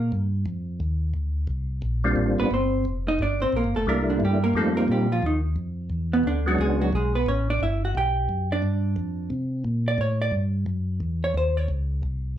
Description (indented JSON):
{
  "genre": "soul jazz organ trio",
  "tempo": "176 BPM",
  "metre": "4/4",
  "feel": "swing 64% on 8ths",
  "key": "F mixolydian, A mixolydian from 7.3 s",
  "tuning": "A4 = 440 Hz",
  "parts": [
    { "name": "vintage hollow-body jazz guitar", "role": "accompaniment", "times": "0.0-0.1, 2.4-11.7 s", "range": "B2 to G5", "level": "-25 LUFS", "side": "right 2 dB", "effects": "none" },
    { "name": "mellow tonewheel organ", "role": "bass", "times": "0.0-12.4 s", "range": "F1 to C3", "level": "-25 LUFS", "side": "equal", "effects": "slow rotary speaker" },
    { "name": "percussive tonewheel organ", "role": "melody", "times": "2.0-6.9 s", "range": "G3 to F#4", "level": "-24 LUFS", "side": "equal", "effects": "chorus vibrato, fast rotary speaker" }
  ],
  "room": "moderate club reverb, RT60 0.7 s",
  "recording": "heard from further back in the room",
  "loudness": "-22 LUFS",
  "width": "side -11 dB against mid",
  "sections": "0.0-7.3 A section; 7.3-12.4 A section",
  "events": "hollow-body jazz guitar solo 0.0-12.4",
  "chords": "0.5 F5; 1.8 Bb69; 3.2 Gm7; 3.9 C13; 4.6 F7sus4; 5.9 E13; 7.3 A13; 8.6 G5; 9.3 Bbadd9; 10.0 Em69; 11.4 C#sus2",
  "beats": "0.13 | 0.47 0.81 1.15 1.49 | 1.83 2.17 2.51 2.85 | 3.19 3.53 3.87 4.21 | 4.55 4.89 5.23 5.57 | 5.91 6.25 6.59 6.93 | 7.27 7.61 7.95 8.29 | 8.63 8.97 9.32 9.66 | 10.00 10.34 10.68 11.02 | 11.36 11.70 12.04"
}